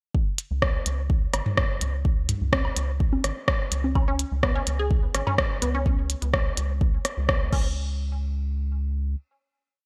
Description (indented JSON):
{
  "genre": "minimal techno",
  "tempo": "126 BPM",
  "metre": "4/4",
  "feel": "straight",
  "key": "unclear",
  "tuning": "A4 = 441 Hz",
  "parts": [
    { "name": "electronic kick drum", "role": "drums", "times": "0.1-7.6 s", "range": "none", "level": "-26 LUFS", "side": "equal", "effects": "none" },
    { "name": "minimal click drum kit", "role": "drums", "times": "0.4-7.6 s", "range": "crash cymbal, hi-hat, rim click", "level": "-29 LUFS", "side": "equal", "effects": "gated reverb" },
    { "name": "rubbery square bass", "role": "bass", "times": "0.5-9.2 s", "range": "G#1 to C#2", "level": "-30 LUFS", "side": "equal", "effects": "sidechain pumping" },
    { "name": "electronic woodblock, toms and bongos", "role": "percussion", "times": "1.3-5.4 s", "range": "none", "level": "-32 LUFS", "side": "equal", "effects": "gated reverb, delay" },
    { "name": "resonant blip pluck", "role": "riff", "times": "4.0-8.0 s", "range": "B3 to G#4", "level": "-34 LUFS", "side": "equal", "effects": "phaser, sidechain pumping, digital delay" }
  ],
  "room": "light reverb",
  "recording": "bright 1980s-style digital production",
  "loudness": "-25 LUFS",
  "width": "mono",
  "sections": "0.1-7.8 groove; 7.8-9.9 final hit",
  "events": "none",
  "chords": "0.1 C#5; 7.5 N.C."
}